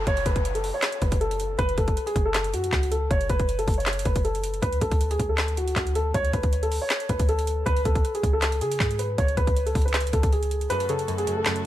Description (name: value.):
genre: hip hop, trap.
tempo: 158 BPM.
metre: 4/4.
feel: half-time.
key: F# minor.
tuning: A4 = 440 Hz.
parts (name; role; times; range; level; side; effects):
dark concert grand piano; melody; 0.0-11.6 s; F#4 to C#5; -27 LUFS; equal; low-pass filter, ping-pong delay.
clean 808-style bass; bass; 0.0-10.7 s; F#1 to C#3; -27 LUFS; equal; none.
downlifter; sound effects; 0.0-1.6 s; none; -39 LUFS; left 3 dB; none.
trap drum kit; drums; 0.1-11.6 s; handclaps, hi-hat, kick drum, snare drum; -26 LUFS; equal; none.
string-like resonator pluck; accompaniment; 10.7-11.7 s; F#2 to C#3; -29 LUFS; equal; chorus, phaser, low-pass filter.
warm chamber string section; sustained chords; 10.7-11.7 s; C#3 to A4; -33 LUFS; left 1 dB; none.
room: small room ambience.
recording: none.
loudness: -22 LUFS.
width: side -13 dB against mid.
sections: 0.0-11.7 A section.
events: kick muted 10.7-11.7.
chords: 0.0 F#m; 4.6 D5; 7.7 C#5; 10.7 F#m.